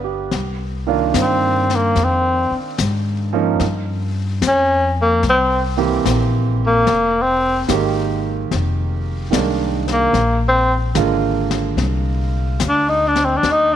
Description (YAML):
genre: jazz ballad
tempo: 73 BPM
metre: 4/4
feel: swing 67% on 8ths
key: C minor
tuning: A4 = 435 Hz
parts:
  - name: breathy tenor saxophone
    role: melody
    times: 0.0-13.8 s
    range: Bb3 to Eb4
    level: -16 LUFS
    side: left 1 dB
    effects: none
  - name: clear baby grand piano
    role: accompaniment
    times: 0.0-13.5 s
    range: D3 to D5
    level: -22 LUFS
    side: right 9 dB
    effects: none
  - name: upright bass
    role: bass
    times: 0.0-13.8 s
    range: F1 to Ab2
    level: -21 LUFS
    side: left 1 dB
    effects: none
  - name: jazz brush drum kit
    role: drums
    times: 0.3-13.8 s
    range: brushed snare drum, hi-hat, snare drum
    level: -25 LUFS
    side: left 8 dB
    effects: none
room: moderate echo chamber reverb, RT60 2.1 s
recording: 1960s-style stereo with parts hard left and right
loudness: -15 LUFS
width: side -10 dB against mid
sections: 0.3-13.8 A section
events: tenor saxophone solo 0.3-13.8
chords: 0.3 Cm11; 3.6 Bbm6 (rootless); 5.2 C7; 6.9 Fm11; 10.1 Bb7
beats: | 0.32 1.15 1.97 2.79 | 3.60 4.42 5.24 6.05 | 6.87 7.68 8.50 9.32 | 10.14 10.96 11.79 12.61 | 13.44